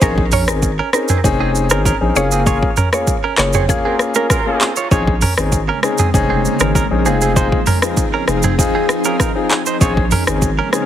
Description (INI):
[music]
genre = afrobeats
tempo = 98 BPM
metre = 4/4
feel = straight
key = Bb minor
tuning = A4 = 439 Hz
[part]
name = mallet-like synth pluck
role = melody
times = 0.0-4.3 s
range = Ab4 to Db5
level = -22 LUFS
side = right 2 dB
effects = chorus, digital delay
[part]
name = warm grand piano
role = accompaniment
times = 0.0-10.9 s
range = Bb3 to Ab4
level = -20 LUFS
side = left 5 dB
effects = none
[part]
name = direct-recorded clean electric guitar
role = riff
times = 0.0-10.7 s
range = C4 to Db5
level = -22 LUFS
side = right 6 dB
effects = digital delay
[part]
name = saturated sub bass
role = bass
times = 0.0-10.6 s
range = F1 to Bb1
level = -19 LUFS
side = equal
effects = none
[part]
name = afro-pop drum kit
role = drums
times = 0.0-10.9 s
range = handclaps, hi-hat, kick drum, rim click, shaker, toms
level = -17 LUFS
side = equal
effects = none
[part]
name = warm horn section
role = second line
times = 3.8-4.7 s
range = Gb3 to Bb4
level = -25 LUFS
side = right 3 dB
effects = digital delay
[part]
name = granular cloud pad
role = sustained chords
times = 5.5-10.9 s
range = Db3 to Ab4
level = -22 LUFS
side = equal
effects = built-in reverb
[sound]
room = digital ambience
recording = heavily compressed radio sound, multiband compression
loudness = -13 LUFS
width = side -10 dB against mid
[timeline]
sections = 0.0-10.9 A section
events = band accent 2.5-4.9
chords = 0.0 Bbm11; 2.2 Gbmaj7; 4.9 Bbm11